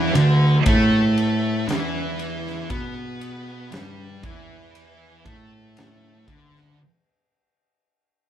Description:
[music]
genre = stoner and doom metal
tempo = 59 BPM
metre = 4/4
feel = straight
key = unclear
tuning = A4 = 440 Hz
[part]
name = thick fuzz guitar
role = riff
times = 0.0-6.8 s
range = D3 to B3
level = -22 LUFS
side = left 1 dB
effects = distortion
[part]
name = thick fuzz guitar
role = riff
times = 0.0-6.8 s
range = D3 to B3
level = -26 LUFS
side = right 6 dB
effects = distortion
[part]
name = fuzz picked electric bass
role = bass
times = 0.0-6.7 s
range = D2 to B2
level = -29 LUFS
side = equal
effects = overdrive
[part]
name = big rock drum kit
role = drums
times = 0.2-6.7 s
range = kick drum, ride cymbal, snare drum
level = -28 LUFS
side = equal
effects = none
[sound]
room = moderate studio reverb, RT60 0.5 s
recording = band playing live in one room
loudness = -18 LUFS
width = side -10 dB against mid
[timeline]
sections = 0.0-6.8 A section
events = fade-out 0.0-6.8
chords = 0.0 D5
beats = 0.66 1.68 | 2.70 3.72 4.74 5.76

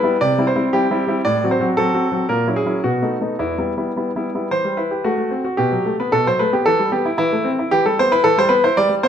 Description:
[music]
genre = classical-period piano sonatina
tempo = 113 BPM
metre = 2/4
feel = rubato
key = E minor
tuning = A4 = 441 Hz
[part]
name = bright concert grand piano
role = solo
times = 0.0-9.1 s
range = E2 to D5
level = -16 LUFS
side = equal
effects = none
[sound]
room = moderate recital hall reverb, RT60 1.8 s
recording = close, detailed microphones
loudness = -16 LUFS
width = side -8 dB against mid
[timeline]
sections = 0.0-4.5 A section; 4.5-9.1 A section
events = none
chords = 0.2 C; 1.2 F#dim/A; 2.3 F#7/A#; 2.8 B7; 3.4 Em; 5.0 F#dim/A; 5.6 B5; 6.7 Em; 7.2 Am/E; 7.7 Em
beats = | 0.19 0.71 | 1.24 1.76 | 2.29 2.84 | 3.40 3.96 | 4.51 5.05 | 5.58 6.12 | 6.65 7.18 | 7.71 8.24 | 8.76

